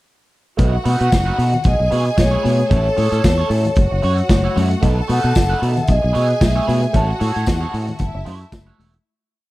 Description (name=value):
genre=disco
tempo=113 BPM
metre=4/4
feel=swing 56% on 16ths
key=F# dorian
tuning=A4 = 438 Hz
part: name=clear studio string section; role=second line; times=0.6-9.0 s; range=E4 to A5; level=-27 LUFS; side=equal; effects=none
part: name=electric guitar at the edge of break-up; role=accompaniment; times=0.6-9.0 s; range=A3 to C#5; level=-27 LUFS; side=right 5 dB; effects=wah
part: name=fingered electric bass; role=bass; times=0.6-9.0 s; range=E1 to B2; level=-18 LUFS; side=equal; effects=none
part: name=vintage drum kit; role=drums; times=0.6-9.0 s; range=hi-hat, kick drum, snare drum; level=-18 LUFS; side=equal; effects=none
part: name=congas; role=percussion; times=0.6-8.9 s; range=none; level=-27 LUFS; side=left 5 dB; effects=none
part: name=vibraphone with medium mallets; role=melody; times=0.9-8.8 s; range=C#5 to A5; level=-21 LUFS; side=equal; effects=none
part: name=tambourine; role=percussion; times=1.1-8.7 s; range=none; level=-37 LUFS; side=left 7 dB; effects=none
room=small room reverb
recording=dark, warm production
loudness=-14 LUFS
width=side -18 dB against mid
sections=0.6-9.1 verse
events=fade-out 6.9-9.1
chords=0.6 B7; 1.6 E6/B; 2.7 Amaj7; 3.8 F#m7; 4.8 B7; 5.9 E6/B; 6.9 Amaj7; 8.0 F#m7